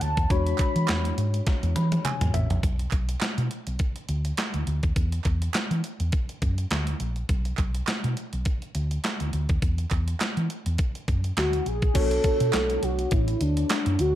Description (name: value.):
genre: early-eighties boogie funk.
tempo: 103 BPM.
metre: 4/4.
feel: swing 56% on 16ths.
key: B dorian.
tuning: A4 = 440 Hz.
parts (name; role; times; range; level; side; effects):
warm velvety synth lead; melody; 0.0-1.5, 11.4-14.2 s; D4 to B5; -27 LUFS; equal; chorus.
tine electric piano; accompaniment; 0.0-2.6, 11.9-14.2 s; G#3 to B5; -32 LUFS; left 5 dB; overdrive, fast stereo tremolo.
hollow-body short-scale fingered electric bass; bass; 0.0-14.1 s; A1 to E3; -26 LUFS; equal; none.
clean 12-bit digital drum machine; drums; 0.0-14.1 s; crash cymbal, handclaps, hi-hat, kick drum, snare drum, toms; -27 LUFS; equal; none.
group handclap; percussion; 0.6-13.9 s; none; -35 LUFS; right 11 dB; none.
room: little or no reverb.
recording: none.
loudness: -23 LUFS.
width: side -12 dB against mid.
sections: 0.0-2.6 A section; 2.6-12.0 B section; 12.0-14.2 A section.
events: drum fill 1.5-2.6; tine electric piano fill 1.5-2.6.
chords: 0.3 E13; 2.6 Bm; 5.0 Esus2; 7.3 Bm; 9.6 Esus2; 12.0 Bm9.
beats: | 0.30 0.88 1.47 2.05 | 2.63 3.21 3.80 4.38 | 4.96 5.54 6.13 6.71 | 7.29 7.88 8.46 9.04 | 9.62 10.21 10.79 11.37 | 11.95 12.54 13.12 13.70.